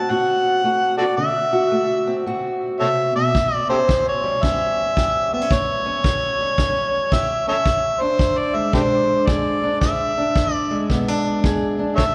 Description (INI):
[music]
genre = acoustic country blues, solo or duo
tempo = 111 BPM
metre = 4/4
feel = swing 64% on 8ths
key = A mixolydian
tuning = A4 = 441 Hz
[part]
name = overdriven harmonica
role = melody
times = 0.0-12.1 s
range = F#4 to A5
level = -22 LUFS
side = equal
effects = none
[part]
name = fingerpicked steel-string acoustic guitar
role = accompaniment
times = 0.0-12.1 s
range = E2 to G#4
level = -25 LUFS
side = equal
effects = none
[part]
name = kick drum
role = drums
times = 3.3-12.1 s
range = none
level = -25 LUFS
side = equal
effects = none
[sound]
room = wet cathedral reverb, RT60 5.1 s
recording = recorded in a church or concert hall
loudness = -20 LUFS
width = mono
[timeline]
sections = 0.0-12.1 A section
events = none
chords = 0.0 D7; 3.3 A7; 7.7 E7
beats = 0.11 0.65 | 1.19 1.73 2.26 2.80 | 3.34 3.88 4.42 4.96 | 5.50 6.04 6.58 7.12 | 7.66 8.20 8.74 9.28 | 9.82 10.36 10.90 11.44 | 11.98